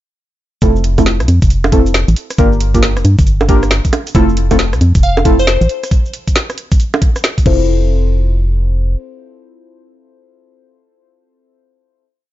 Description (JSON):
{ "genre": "UK garage, two-step garage", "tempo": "136 BPM", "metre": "4/4", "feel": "swing 64% on 16ths", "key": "F major", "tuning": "A4 = 440 Hz", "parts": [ { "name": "deep mellow chord stab", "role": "stabs", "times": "0.6-12.0 s", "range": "A3 to C5", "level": "-17 LUFS", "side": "left 1 dB", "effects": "chorus, ping-pong delay" }, { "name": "organ-like FM bass", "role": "bass", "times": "0.6-9.0 s", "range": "F1 to G2", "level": "-13 LUFS", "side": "equal", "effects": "sidechain pumping" }, { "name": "electronic kick drum", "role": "drums", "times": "0.6-7.6 s", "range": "none", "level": "-12 LUFS", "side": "equal", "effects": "studio reverb" }, { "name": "garage drum kit", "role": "drums", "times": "0.6-7.6 s", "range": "bongos, crash cymbal, hi-hat, rim click, shaker, snare drum", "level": "-17 LUFS", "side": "right 2 dB", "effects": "overdrive, studio reverb" }, { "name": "glassy wavetable pluck", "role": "melody", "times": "5.0-5.8 s", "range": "C5 to F5", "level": "-17 LUFS", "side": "left 1 dB", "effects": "chorus, cassette tape, ping-pong delay" } ], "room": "little or no reverb", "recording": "nothing above 7.6 kHz", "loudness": "-10 LUFS", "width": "side -14 dB against mid", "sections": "0.6-7.7 drop; 7.7-11.2 final hit", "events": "drop 0.6-7.7", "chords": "0.6 Fmaj7; 2.4 Gm7; 3.9 Fmaj7; 5.9 N.C.; 7.5 Fmaj7", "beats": "| 0.62 1.06 1.50 1.94 | 2.38 2.83 3.27 3.71 | 4.15 4.59 5.03 5.47 | 5.91 6.36 6.80 7.24 | 7.68 8.12 8.56 9.00 | 9.44 9.88 10.33 10.77" }